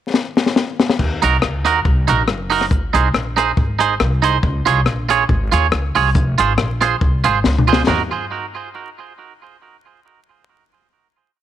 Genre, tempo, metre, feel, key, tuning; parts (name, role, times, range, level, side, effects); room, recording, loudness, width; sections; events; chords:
ska; 140 BPM; 4/4; swing 54% on 8ths; Eb dorian; A4 = 440 Hz
compact cocktail drum kit; drums; 0.1-8.0 s; crash cymbal, hi-hat, kick drum, rim click, snare drum, toms; -18 LUFS; left 3 dB
upright bass; bass; 1.0-8.1 s; F1 to Eb2; -19 LUFS; equal; transformer saturation
twangy electric guitar; accompaniment; 1.2-8.0 s; Eb4 to Db5; -18 LUFS; right 8 dB; tape echo
light reverb, small room ambience; 1960s-style stereo, vinyl crackle; -14 LUFS; side -11 dB against mid
0.0-1.0 pickup bar; 1.0-7.9 A section; 7.9-9.6 final chord
drum fill 0.1-1.0, 7.4-7.9
0.0 N.C.; 1.0 Ebm; 2.7 Ab; 4.4 Db; 6.2 Fm; 7.9 Ebm